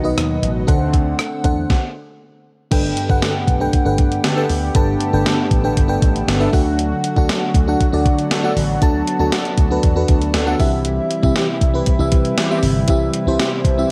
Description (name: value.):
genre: 1980s-style pop.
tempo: 118 BPM.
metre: 4/4.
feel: straight.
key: unclear.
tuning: A4 = 442 Hz.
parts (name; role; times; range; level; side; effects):
FM electric piano with soft pad layer; accompaniment; 0.0-13.9 s; G2 to A5; -22 LUFS; equal; chorus.
brassy analog pad; sustained chords; 0.0-13.9 s; C3 to F#5; -28 LUFS; equal; chorus.
slap bass with an envelope filter; bass; 0.0-13.8 s; G1 to D3; -24 LUFS; equal; none.
gated 80s digital drum machine; drums; 0.2-13.8 s; crash cymbal, hi-hat, kick drum, rim click, snare drum; -20 LUFS; equal; gated reverb, gated reverb snare.
mellow synth brass; stabs; 3.2-13.5 s; D3 to A4; -29 LUFS; equal; chorus.
room: light reverb.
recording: none.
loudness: -17 LUFS.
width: mono.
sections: 0.0-2.7 A section; 2.7-13.9 B section.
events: stop 1.7-2.7.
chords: 0.0 B; 0.7 D7; 2.7 Gadd9; 6.5 D; 10.6 C.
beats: 0.17 | 0.68 1.19 1.70 2.21 | 2.72 3.23 3.73 4.24 | 4.75 5.26 5.77 6.28 | 6.79 7.29 7.80 8.31 | 8.82 9.33 9.84 10.34 | 10.85 11.36 11.87 12.38 | 12.89 13.39 13.90.